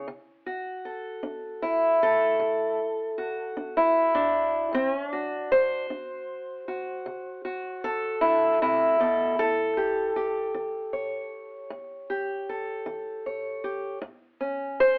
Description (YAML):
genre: acoustic country blues, solo or duo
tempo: 52 BPM (dotted quarters)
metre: 12/8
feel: straight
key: unclear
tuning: A4 = 440 Hz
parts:
  - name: fingerpicked steel-string acoustic guitar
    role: solo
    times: 0.0-15.0 s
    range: A2 to C#5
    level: -27 LUFS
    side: equal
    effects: none
room: light reverb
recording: telephone sound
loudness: -27 LUFS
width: mono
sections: 0.0-15.0 A section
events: none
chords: 0.1 D7; 9.4 A7